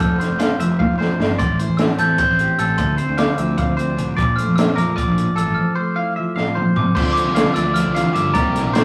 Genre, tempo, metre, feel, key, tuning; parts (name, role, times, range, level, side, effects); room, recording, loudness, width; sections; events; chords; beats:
math rock and midwest emo; 302 BPM (eighths); 7/8; straight; A4 = 438 Hz
glockenspiel with hard plastic mallets; melody; 0.0-8.8 s; Bb5 to G6; -25 LUFS; equal
mellow electric guitar; accompaniment; 0.0-8.8 s; F2 to G4; -25 LUFS; equal
twangy electric guitar; arpeggios; 0.0-8.8 s; A4 to F5; -28 LUFS; equal
fuzz fingered electric bass; bass; 0.0-8.8 s; F1 to G2; -25 LUFS; equal; overdrive
compact cocktail drum kit; drums; 0.0-8.8 s; crash cymbal, hi-hat, kick drum, snare drum, toms; -23 LUFS; equal
overdriven semi-hollow guitar; riff; 7.0-8.8 s; C3 to E4; -28 LUFS; equal
moderate small room reverb, RT60 0.6 s; rough rehearsal-room recording, warm saturation, studio ambience; -18 LUFS; mono
0.0-7.0 A section; 7.0-8.8 B section
drum fill 0.8-1.4, 6.4-7.0
0.0 Fmaj7; 1.4 Am7; 2.8 Dm7; 4.2 Bbmaj7; 5.6 Fmaj7; 7.0 Dm7
| 0.01 0.20 0.40 0.60 0.80 1.00 1.20 | 1.40 1.60 1.80 2.00 2.20 2.39 2.59 | 2.79 2.99 3.19 3.39 3.59 3.79 3.98 | 4.18 4.38 4.58 4.78 4.98 5.17 5.37 | 5.57 5.77 5.97 6.17 6.37 6.56 6.76 | 6.96 7.16 7.36 7.55 7.75 7.95 8.15 | 8.35 8.55 8.75